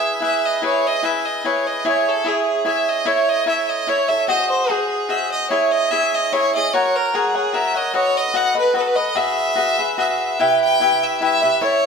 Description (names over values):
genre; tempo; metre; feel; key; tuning
mexican folk, mariachi; 148 BPM; 3/4; straight; E major; A4 = 440 Hz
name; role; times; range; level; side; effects
clear violin; melody; 0.0-11.9 s; G#4 to G5; -20 LUFS; equal; none
cavaquinho; accompaniment; 0.0-11.9 s; E4 to F#5; -18 LUFS; equal; none
room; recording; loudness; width
wet stone room reverb, RT60 1.0 s; band playing live in one room; -16 LUFS; side -5 dB against mid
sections
0.6-10.4 A section; 10.4-11.9 B section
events
none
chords
0.0 E; 1.9 C#m/E; 3.1 A; 4.3 G#7; 5.5 C#m; 6.7 F#; 7.9 B7; 9.2 Eadd9; 10.4 Em